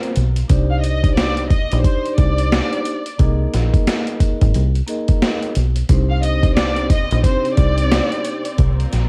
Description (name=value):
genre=hip hop, boom-bap hip-hop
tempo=89 BPM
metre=4/4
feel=swing 62% on 16ths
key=C minor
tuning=A4 = 441 Hz
part: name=vibraphone with soft mallets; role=accompaniment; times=0.0-8.4 s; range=Bb3 to Eb5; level=-27 LUFS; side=equal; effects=cassette tape, high-pass filter, low-pass filter
part: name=warm symphonic string section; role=sustained chords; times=0.0-0.5, 5.9-9.1 s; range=Bb2 to Bb4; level=-36 LUFS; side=equal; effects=none
part: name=boom bap sampler-style drum kit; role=drums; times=0.0-9.1 s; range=hi-hat, kick drum, snare drum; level=-20 LUFS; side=equal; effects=cassette tape
part: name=deep dub fingered electric bass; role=bass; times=0.2-9.1 s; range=Ab1 to C2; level=-20 LUFS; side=equal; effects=none
part: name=rich studio violin section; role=melody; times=0.7-8.5 s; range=C5 to F5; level=-26 LUFS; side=equal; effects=high-pass filter, low-pass filter, cassette tape, tape echo
room=little or no reverb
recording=home recording on cassette, vinyl crackle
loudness=-17 LUFS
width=mono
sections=0.5-9.1 A section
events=none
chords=0.5 Cmadd9; 3.2 Absus2; 5.9 Cmadd9; 8.6 Bbsus2